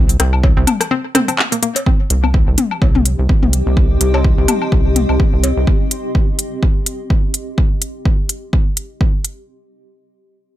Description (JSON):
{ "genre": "minimal techno", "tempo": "126 BPM", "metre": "4/4", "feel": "swing 56% on 16ths", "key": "C minor", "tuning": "A4 = 439 Hz", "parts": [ { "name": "rubbery square bass", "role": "bass", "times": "0.0-5.7 s", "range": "C2", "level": "-15 LUFS", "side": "equal", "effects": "sidechain pumping" }, { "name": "techno drum kit", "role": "drums", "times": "0.1-9.4 s", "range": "handclaps, hi-hat", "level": "-16 LUFS", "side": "equal", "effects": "overdrive, small room ambience" }, { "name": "hollow square pluck", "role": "riff", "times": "0.2-3.7 s", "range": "Bb3 to C4", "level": "-21 LUFS", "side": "left 1 dB", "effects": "chorus, sidechain pumping, ping-pong delay" }, { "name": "organic electronic drum kit", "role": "percussion", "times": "0.2-5.5 s", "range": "cowbell, rim click, toms, woodblock", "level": "-20 LUFS", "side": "left 4 dB", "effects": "small room ambience, tape echo" }, { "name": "electronic kick drum", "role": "drums", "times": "0.4-9.1 s", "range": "none", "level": "-14 LUFS", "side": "equal", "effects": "small room ambience" }, { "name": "granular cloud pad", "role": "texture", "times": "3.1-7.6 s", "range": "C4 to C6", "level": "-23 LUFS", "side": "left 1 dB", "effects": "built-in reverb, sidechain pumping" } ], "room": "light reverb", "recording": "none", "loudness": "-13 LUFS", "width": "side -14 dB against mid", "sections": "0.0-1.9 A section; 1.9-9.5 B section", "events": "drop 0.0-1.9; break 0.9-1.9; filter sweep on synth arpeggio sound 1.9-3.8", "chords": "0.0 N.C.; 1.9 Cm", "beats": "0.43 0.91 1.39 | 1.86 2.34 2.82 3.29 | 3.77 4.25 4.72 5.20 | 5.67 6.15 6.63 7.10 | 7.58 8.05 8.53 9.01" }